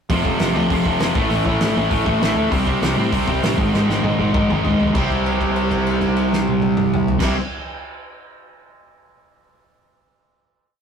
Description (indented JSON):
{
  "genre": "punk rock",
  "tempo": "197 BPM",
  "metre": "4/4",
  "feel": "straight",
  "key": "C major",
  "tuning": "A4 = 439 Hz",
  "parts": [
    { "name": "distorted electric guitar", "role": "riff", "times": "0.1-7.4 s", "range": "F2 to C4", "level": "-21 LUFS", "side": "left 3 dB", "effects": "distortion" },
    { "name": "distorted electric guitar", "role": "riff", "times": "0.1-7.4 s", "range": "F2 to C4", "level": "-21 LUFS", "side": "right 4 dB", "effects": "distortion" },
    { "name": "fuzz picked electric bass", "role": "bass", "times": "0.1-7.3 s", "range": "F1 to A2", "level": "-24 LUFS", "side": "equal", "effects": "overdrive" },
    { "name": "loose indie drum kit", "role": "drums", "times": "0.1-7.3 s", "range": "crash cymbal, hi-hat, kick drum, snare drum, toms", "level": "-23 LUFS", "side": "equal", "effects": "none" }
  ],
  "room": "moderate small room reverb, RT60 0.5 s",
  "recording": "rough rehearsal-room recording, warm saturation",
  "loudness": "-16 LUFS",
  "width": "side -7 dB against mid",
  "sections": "0.1-5.0 verse; 5.0-7.4 final chord",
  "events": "drum fill 3.7-5.0; held note 5.0-7.2",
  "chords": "0.1 F5; 1.2 A5; 2.5 C5; 3.6 Ab5; 5.0 C5",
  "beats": "| 0.10 0.40 0.70 1.00 | 1.31 1.61 1.91 2.22 | 2.52 2.83 3.13 3.43 | 3.74 4.04 4.35 4.65 | 4.96 5.26 5.57 5.87 | 6.18 6.48 6.79 7.09"
}